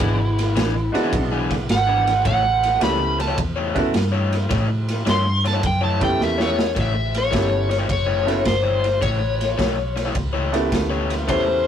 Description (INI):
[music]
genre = electric blues shuffle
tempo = 106 BPM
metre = 4/4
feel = swing 67% on 8ths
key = A mixolydian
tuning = A4 = 440 Hz
[part]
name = overdriven slide guitar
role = melody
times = 0.0-11.6 s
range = E4 to C6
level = -21 LUFS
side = equal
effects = none
[part]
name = bright grand piano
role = accompaniment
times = 0.0-11.7 s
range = G#3 to G4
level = -24 LUFS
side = right 2 dB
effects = none
[part]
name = overdriven electric guitar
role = riff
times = 0.0-11.5 s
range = E3 to C#5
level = -26 LUFS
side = left 4 dB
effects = none
[part]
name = vintage muted fingered electric bass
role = bass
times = 0.0-11.7 s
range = F#1 to A2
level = -23 LUFS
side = equal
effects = none
[part]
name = raw garage drum kit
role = drums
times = 0.0-11.5 s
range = kick drum, ride cymbal, snare drum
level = -25 LUFS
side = right 1 dB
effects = none
[sound]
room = wet booth ambience, RT60 0.2 s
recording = rough rehearsal-room recording, warm saturation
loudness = -18 LUFS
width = side -9 dB against mid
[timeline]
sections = 0.0-6.8 A section; 6.8-11.7 B section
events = electric slide guitar solo 0.0-6.8; drum fill 6.2-6.8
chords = 0.0 E7; 2.2 A7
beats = | 0.00 0.56 1.12 1.69 | 2.25 2.81 3.37 3.94 | 4.50 5.06 5.63 6.19 | 6.76 7.32 7.89 8.45 | 9.02 9.58 10.15 10.71 | 11.28